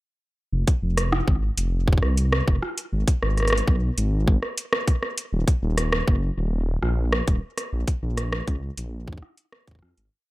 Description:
IDM; 100 BPM; 4/4; straight; F phrygian; A4 = 440 Hz
dark detuned saw bass; bass; 0.5-10.1 s; Eb1 to F2; -23 LUFS; equal; tube saturation
booming analog drum machine; drums; 0.7-10.1 s; hi-hat, rim click; -26 LUFS; equal
electronic kick drum; drums; 0.7-9.8 s; -20 LUFS; equal
little or no reverb; -21 LUFS; side -19 dB against mid
0.5-10.1 groove
fade-out 6.9-10.1

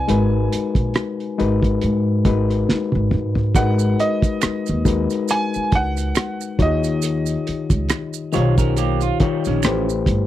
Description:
R&B, neo-soul; 69 BPM; 4/4; swing 56% on 16ths; G# dorian; A4 = 443 Hz
clear grand piano; melody; 0.0-8.3 s; D#5 to G#5; -25 LUFS; right 3 dB
overdriven reed electric piano; accompaniment; 0.0-10.3 s; D#3 to C#5; -22 LUFS; left 5 dB
upright bass; bass; 0.1-10.3 s; G1 to G#2; -21 LUFS; right 1 dB
cloth-damped thuddy drum kit; drums; 0.1-10.3 s; hi-hat, kick drum, rim click, snare drum, toms; -20 LUFS; right 1 dB
maracas and finger snaps; percussion; 3.6-10.1 s; -31 LUFS; right 18 dB
electric guitar through a small old amp; second line; 8.3-9.9 s; E#3 to C#5; -25 LUFS; right 12 dB
little or no reverb; dry, close 1970s-style studio recording; -17 LUFS; side -13 dB against mid
0.0-3.5 A section; 3.5-10.3 A section
drum fill 2.7-3.5
0.1 G#m7; 3.5 G#m9; 6.6 D#7; 9.6 Am9

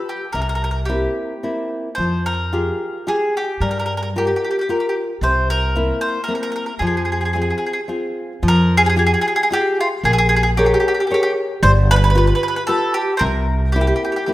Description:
italian folk, Italian serenade; 112 BPM; 3/4; swing 54% on 8ths; F harmonic minor; A4 = 440 Hz
nylon-string guitar; accompaniment; 0.0-14.3 s; C3 to Db5; -22 LUFS; left 2 dB
mandolin; melody; 0.1-14.3 s; F4 to C5; -19 LUFS; equal; slapback echo
upright bass; bass; 0.3-13.9 s; G1 to G2; -18 LUFS; equal
moderate lush hall reverb, RT60 2.2 s; rough home demo mix; -16 LUFS; side -16 dB against mid
0.0-8.4 A section; 8.4-14.3 A section
0.3 C7; 2.0 Fmadd9; 3.6 Gm7; 5.2 C7; 6.8 Fm; 8.4 Fmadd9; 10.0 Bbm7; 11.6 G7; 13.2 C7

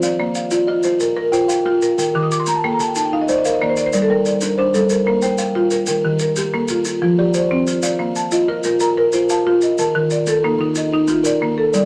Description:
southern african traditional, mbira-style interlocking cycle; 123 BPM (dotted quarters); 12/8; straight; Bb major; A4 = 440 Hz
buzzing kalimba; arpeggios; 0.0-11.9 s; Eb3 to G5; -20 LUFS; equal
buzzing marimba with hard mallets; arpeggios; 0.0-11.9 s; Eb3 to Eb6; -21 LUFS; equal
maracas; percussion; 0.0-11.9 s; -30 LUFS; equal
moderate studio reverb, RT60 0.5 s; -18 LUFS; mono
0.0-7.8 A section; 7.8-11.9 B section
marimba fill 2.0-3.9
0.0 Bb; 2.0 Eb; 3.9 Gm; 4.9 Bb5; 5.9 Eb; 6.9 F; 7.8 Bb; 9.8 Eb5

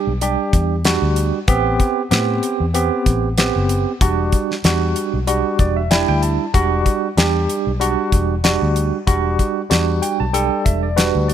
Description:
straight-eighth soul blues; 95 BPM; 4/4; swing 56% on 16ths; E minor; A4 = 445 Hz
barky tine electric piano; accompaniment; 0.0-11.3 s; G3 to A5; -18 LUFS; right 2 dB; auto-pan
vintage muted fingered electric bass; bass; 0.1-11.3 s; E1 to A2; -20 LUFS; left 1 dB
damped 70s drum kit; drums; 0.2-11.3 s; hi-hat, kick drum, snare drum; -18 LUFS; equal
little or no reverb; -15 LUFS; side -10 dB against mid
0.0-11.3 A section
tine electric piano fill 5.3-6.5, 9.7-11.3
0.0 Em7; 1.5 Am7; 4.0 Em7

